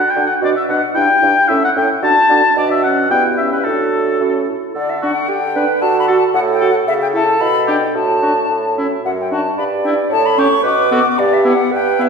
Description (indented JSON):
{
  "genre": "quick classical-period movement for wind quintet",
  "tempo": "112 BPM",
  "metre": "2/4",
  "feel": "straight",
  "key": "D major",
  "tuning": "A4 = 443 Hz",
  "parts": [
    { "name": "concert flute", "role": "melody", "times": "0.0-12.1 s", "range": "A4 to D6", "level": "-19 LUFS", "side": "left 3 dB", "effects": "none" },
    { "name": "warm oboe", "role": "second line", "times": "0.0-12.1 s", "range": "E4 to A5", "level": "-17 LUFS", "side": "left 2 dB", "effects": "none" },
    { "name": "warm French horn", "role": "accompaniment", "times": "0.0-12.1 s", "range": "B3 to F#4", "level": "-21 LUFS", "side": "equal", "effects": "none" },
    { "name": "mellow clarinet", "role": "accompaniment", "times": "0.2-12.1 s", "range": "E4 to D5", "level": "-20 LUFS", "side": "right 6 dB", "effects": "none" },
    { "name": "warm bassoon", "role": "bass", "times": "0.2-12.1 s", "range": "F#2 to D3", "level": "-20 LUFS", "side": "right 1 dB", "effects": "none" }
  ],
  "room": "wet scoring stage reverb, RT60 1.7 s",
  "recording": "heard from further back in the room",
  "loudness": "-12 LUFS",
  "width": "side -5 dB against mid",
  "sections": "0.0-4.8 A section; 4.8-12.1 B section",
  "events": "none",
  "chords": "0.4 Bm; 1.0 Em7/G; 1.5 A7; 2.0 D; 2.6 Bm; 3.1 Em/G; 3.7 D/A; 4.2 A; 4.8 D; 5.3 G/D; 5.8 D; 6.9 A/C#; 7.4 G/B; 8.0 D/A; 8.5 A; 9.0 D/F#; 9.6 Em7/G (rootless); 10.1 A; 10.6 Bm; 11.2 Em/G",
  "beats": "| 0.43 0.96 | 1.50 2.03 | 2.56 3.11 | 3.66 4.21 | 4.76 5.29 | 5.82 6.35 | 6.87 7.41 | 7.95 8.50 | 9.04 9.58 | 10.11 10.64 | 11.17 11.71"
}